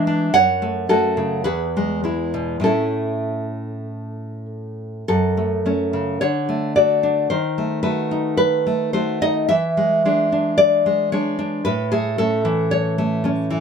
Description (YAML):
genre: romantic piece for solo classical guitar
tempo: 48-58 BPM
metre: 2/4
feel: rubato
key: A major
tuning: A4 = 440 Hz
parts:
  - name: nylon-string guitar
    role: solo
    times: 0.0-13.6 s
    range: E2 to F#5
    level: -18 LUFS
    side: equal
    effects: none
room: light reverb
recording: close, detailed microphones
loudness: -17 LUFS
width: side -6 dB against mid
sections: 0.0-5.1 A section; 5.1-13.6 A section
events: none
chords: 0.3 F#m; 1.4 E; 2.6 A; 5.1 F#m; 6.2 D; 7.3 D#dim; 9.5 E7; 11.6 A